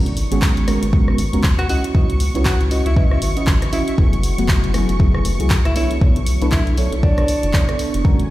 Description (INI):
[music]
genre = deep house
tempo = 118 BPM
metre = 4/4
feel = swing 59% on 16ths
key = unclear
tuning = A4 = 440 Hz
[part]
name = deep dark ambient pad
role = sustained chords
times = 0.0-8.3 s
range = A3 to C#6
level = -31 LUFS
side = right 1 dB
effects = chorus, built-in reverb, sidechain pumping
[part]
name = mellow FM electric piano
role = stabs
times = 0.0-8.2 s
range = F#3 to D#5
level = -23 LUFS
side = right 1 dB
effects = chorus, phaser, sidechain pumping, digital delay
[part]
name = rubbery square bass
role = bass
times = 0.0-8.3 s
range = F#1 to D#2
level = -20 LUFS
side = equal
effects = sidechain pumping
[part]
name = analog string pad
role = texture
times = 0.0-8.3 s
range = G#5 to C#6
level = -32 LUFS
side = right 1 dB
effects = ensemble chorus, sidechain pumping
[part]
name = deep house drum kit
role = drums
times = 0.1-8.3 s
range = handclaps, hi-hat, rim click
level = -26 LUFS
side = equal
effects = none
[part]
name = electronic kick drum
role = drums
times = 0.4-8.2 s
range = none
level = -16 LUFS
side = equal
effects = none
[part]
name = clear alto saxophone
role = melody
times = 1.6-7.8 s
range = D4 to F#4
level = -26 LUFS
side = equal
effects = ping-pong delay
[sound]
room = digital ambience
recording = played on a big sound system in a bare room, large studio reverb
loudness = -14 LUFS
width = side -16 dB against mid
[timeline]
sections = 0.0-8.3 A section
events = none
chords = 0.0 G#m11; 1.7 C#m11; 4.0 F#m11; 5.8 Bm11